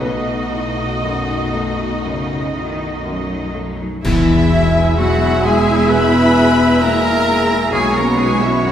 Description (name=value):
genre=cinematic, emotional film score for orchestra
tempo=58-66 BPM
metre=4/4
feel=rubato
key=unclear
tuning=A4 = 440 Hz
part: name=rich studio violin section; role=melody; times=0.0-8.7 s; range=D#4 to E5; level=-27 LUFS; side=left 3 dB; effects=none
part: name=rich studio violin section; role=second line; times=0.0-8.7 s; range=F#4 to B5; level=-25 LUFS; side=left 2 dB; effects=none
part: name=felt-muted upright piano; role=accompaniment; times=0.0-8.7 s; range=B1 to B4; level=-24 LUFS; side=left 1 dB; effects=none
part: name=rich studio viola section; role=accompaniment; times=0.0-8.7 s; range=G#3 to D#5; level=-22 LUFS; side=right 1 dB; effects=none
part: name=dark French horn section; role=sustained chords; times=0.0-8.7 s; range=E3 to D#4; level=-20 LUFS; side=left 2 dB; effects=none
part: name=concert harp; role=arpeggios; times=0.0-8.7 s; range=B2 to G#5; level=-30 LUFS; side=left 2 dB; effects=none
part: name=clear studio double bass section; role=bass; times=0.0-8.7 s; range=E1 to B1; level=-26 LUFS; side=equal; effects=none
part: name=rich studio cello section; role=bass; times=0.0-8.7 s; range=E2 to F#3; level=-24 LUFS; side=right 1 dB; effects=none
part: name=rich cello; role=melody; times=4.0-8.7 s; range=E4 to B4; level=-21 LUFS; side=right 2 dB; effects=none
part: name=clear oboe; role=second line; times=4.0-8.7 s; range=C#5 to E5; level=-22 LUFS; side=right 3 dB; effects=none
part: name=mellow clarinet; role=second line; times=4.0-8.7 s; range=E4 to B4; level=-24 LUFS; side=left 2 dB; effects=none
part: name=mellow large flute ensemble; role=second line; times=4.0-8.7 s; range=G#5 to B5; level=-26 LUFS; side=left 1 dB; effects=none
part: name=clash cymbals and concert bass drum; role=percussion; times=4.0-5.9 s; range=none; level=-22 LUFS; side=equal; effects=none
room=wet recital hall reverb, RT60 1.6 s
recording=recorded in a church or concert hall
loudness=-13 LUFS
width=side -10 dB against mid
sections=0.0-4.0 A section; 4.0-8.7 B section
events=band accent 4.0-5.0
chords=0.0 B7; 4.0 E; 7.7 Badd9